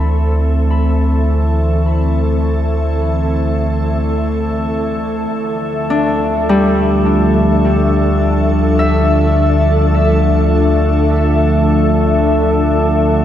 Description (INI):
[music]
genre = ambient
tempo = free time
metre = none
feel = none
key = D dorian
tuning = A4 = 442 Hz
[part]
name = glassy FM pad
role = sustained chords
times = 0.0-13.2 s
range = E3 to E5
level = -16 LUFS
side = left 1 dB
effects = ensemble chorus, built-in reverb
[part]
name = Celtic harp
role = arpeggios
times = 0.0-12.1 s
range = G3 to B5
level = -18 LUFS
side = left 1 dB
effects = tape echo
[part]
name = warm sub bass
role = bass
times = 0.0-13.2 s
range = D2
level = -16 LUFS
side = equal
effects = none
[part]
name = organ-like drone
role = drone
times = 0.0-13.2 s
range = D3 to A3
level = -20 LUFS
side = right 2 dB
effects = ensemble chorus, built-in reverb
[sound]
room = moderate lush hall reverb, RT60 2.7 s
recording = cassette tape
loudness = -12 LUFS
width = side -10 dB against mid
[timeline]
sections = 0.0-13.2 A section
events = fade-in on ambient pad 0.0-13.2; fade-in on synth drone 0.0-13.2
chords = 0.0 Am/D; 5.3 Dmadd9